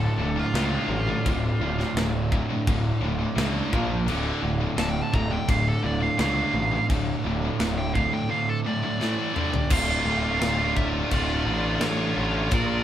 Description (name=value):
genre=heavy metal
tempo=85 BPM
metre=4/4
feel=straight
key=D minor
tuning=A4 = 440 Hz
part: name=nasal lead guitar with a parked wah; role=melody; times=0.0-12.8 s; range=F4 to Bb5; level=-29 LUFS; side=right 2 dB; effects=overdrive
part: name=distorted electric guitar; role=riff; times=0.0-12.8 s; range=D2 to Bb3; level=-30 LUFS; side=equal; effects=distortion
part: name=scooped high-gain guitar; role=riff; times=0.0-12.8 s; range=D2 to Bb4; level=-31 LUFS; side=left 5 dB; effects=distortion
part: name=scooped high-gain guitar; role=riff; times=0.0-12.8 s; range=D2 to Bb4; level=-30 LUFS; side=right 4 dB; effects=distortion
part: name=fuzz picked electric bass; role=bass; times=0.0-12.8 s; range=D1 to C#2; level=-28 LUFS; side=equal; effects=overdrive
part: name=tight metal drum kit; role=drums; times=0.6-12.7 s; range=crash cymbal, kick drum, snare drum, toms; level=-29 LUFS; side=equal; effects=none
room=moderate small room reverb, RT60 0.5 s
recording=band playing live in one room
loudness=-22 LUFS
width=side -11 dB against mid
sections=0.0-9.7 A section; 9.7-12.8 B section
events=lead electric guitar solo 0.0-9.7; drum fill 9.0-9.7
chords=0.0 Dm; 3.7 Bb5; 4.1 Dm; 9.0 A5; 9.4 G5; 9.7 Dm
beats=0.55 | 1.25 1.96 2.67 3.37 | 4.08 4.78 5.49 6.19 | 6.90 7.60 8.30 9.01 | 9.71 10.41 11.12 11.82 | 12.52